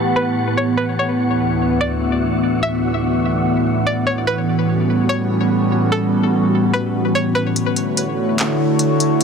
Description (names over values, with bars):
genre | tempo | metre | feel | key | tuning
hip hop, atmospheric cloud-rap | 146 BPM | 4/4 | half-time | D major | A4 = 439 Hz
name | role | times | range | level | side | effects
string-like resonator pluck | melody | 0.0-7.5 s | A4 to E5 | -24 LUFS | left 1 dB | chorus, low-pass filter, ping-pong delay
warbly tape-like pad | sustained chords | 0.0-9.2 s | D2 to F#5 | -16 LUFS | equal | chorus, built-in reverb, phaser, low-pass filter
wind-like tuned noise texture | texture | 0.0-7.5 s | G3 to C#6 | -28 LUFS | equal | built-in reverb
trap drum kit | drums | 7.6-9.2 s | handclaps, hi-hat | -22 LUFS | left 1 dB | vintage 12-bit sampler grit
room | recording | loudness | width
moderate huge ambient reverb, RT60 6.4 s | dense, heavily limited modern master | -15 LUFS | side -6 dB against mid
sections
0.0-7.6 A section; 7.6-9.2 B section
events
kick muted 7.6-9.2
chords
0.0 A13; 1.0 Dmaj9; 4.3 A13; 7.6 Dmaj9